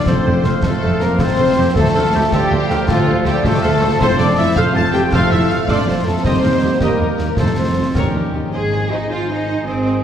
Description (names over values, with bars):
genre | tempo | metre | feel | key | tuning
cinematic, heroic adventure film score | 106 BPM (dotted quarters) | 6/8 | straight | F major | A4 = 440 Hz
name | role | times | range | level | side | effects
warm symphonic violin section | melody | 0.0-9.9 s | F4 to A5 | -28 LUFS | left 3 dB | none
mellow hollow silver concert flute | second line | 0.0-10.0 s | C5 to A6 | -26 LUFS | left 1 dB | none
warm oboe | second line | 0.0-10.0 s | F4 to Eb5 | -28 LUFS | equal | none
warm symphonic violin section | second line | 0.0-10.0 s | F4 to A5 | -28 LUFS | left 2 dB | none
warm trombone section | sustained chords | 0.0-10.0 s | Eb3 to Db4 | -26 LUFS | right 3 dB | none
concert harp | arpeggios | 0.0-10.0 s | Ab2 to C6 | -26 LUFS | left 4 dB | none
dark trumpet section | stabs | 0.0-10.0 s | F4 to A5 | -26 LUFS | equal | none
timpani | percussion | 0.0, 4.0-4.5, 7.4-7.9 s | F2 | -26 LUFS | equal | none
warm symphonic viola section | accompaniment | 0.1-9.9 s | Bb3 to Eb5 | -26 LUFS | right 2 dB | none
dark French horn section | sustained chords | 0.1-10.0 s | F3 to A4 | -21 LUFS | left 2 dB | none
rich studio cello section | bass | 0.1-10.0 s | D2 to Ab4 | -22 LUFS | right 1 dB | none
rich symphonic double bass section | bass | 0.1-10.0 s | F1 to Eb2 | -22 LUFS | right 2 dB | none
concert snare drum, concert bass drum and clash cymbals | drums | 0.1-8.1 s | none | -22 LUFS | equal | none
room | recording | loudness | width
wet scoring stage reverb, RT60 1.8 s | heard from further back in the room | -13 LUFS | side -9 dB against mid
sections
0.0-8.5 A section; 8.5-10.0 B section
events
none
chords
0.0 F; 1.8 Dm7; 4.0 F; 6.2 Eb; 7.4 F; 8.0 Eb7; 8.5 Ab